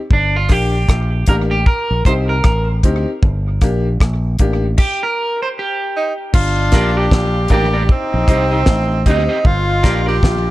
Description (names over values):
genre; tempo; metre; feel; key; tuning
roots reggae; 77 BPM; 4/4; swing 59% on 16ths; G minor; A4 = 443 Hz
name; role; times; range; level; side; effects
electric guitar at the edge of break-up; accompaniment; 0.1-10.2 s; D4 to Eb5; -21 LUFS; right 2 dB; spring reverb, tape echo
fingered electric bass; bass; 0.1-10.5 s; G1 to D2; -17 LUFS; equal; none
damped 70s drum kit; drums; 0.1-10.4 s; crash cymbal, hi-hat, kick drum, rim click, snare drum; -14 LUFS; equal; none
clear upright piano; stabs; 0.5-10.1 s; Bb3 to G4; -24 LUFS; left 3 dB; none
clear tenor saxophone; melody; 6.0-10.5 s; C4 to G4; -19 LUFS; right 2 dB; tape echo
brilliant trombone; second line; 6.3-10.5 s; D4 to F4; -24 LUFS; left 3 dB; tape echo
room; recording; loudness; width
small room ambience; none; -13 LUFS; side -17 dB against mid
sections
0.0-6.3 A section; 6.3-10.5 B section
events
clean electric guitar solo 0.0-6.3; stop 4.8-6.3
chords
0.1 Gm; 1.7 Cm; 3.2 Gm; 4.8 N.C.; 6.3 Gm; 7.9 Cm; 9.4 Gm